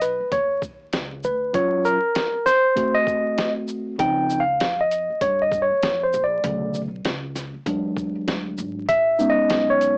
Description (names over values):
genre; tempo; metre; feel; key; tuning
hip hop, jazz-hop; 98 BPM; 4/4; swing 60% on 16ths; unclear; A4 = 441 Hz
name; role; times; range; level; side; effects
tine electric piano; accompaniment; 0.0-10.0 s; C#3 to G5; -19 LUFS; equal; medium stereo tremolo, cassette tape
upright bass; bass; 0.0-10.0 s; G#1 to G2; -34 LUFS; equal; none
boom bap sampler-style drum kit; drums; 0.0-10.0 s; hi-hat, kick drum, shaker, snare drum; -27 LUFS; equal; cassette tape
room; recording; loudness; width
moderate small room reverb, RT60 0.5 s; home recording on cassette, vinyl crackle, small speaker sound; -19 LUFS; side -33 dB against mid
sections
0.0-10.0 A section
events
tine electric piano solo 0.0-10.0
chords
0.0 G#m (rootless); 1.5 F#maj7#11; 2.8 Adim7; 4.0 C#maj9; 6.4 Bm9; 7.7 E7; 8.9 Amaj9#11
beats
0.32 0.93 | 1.54 2.16 2.77 3.38 | 3.99 4.61 5.22 5.83 | 6.44 7.05 7.67 8.28 | 8.89 9.50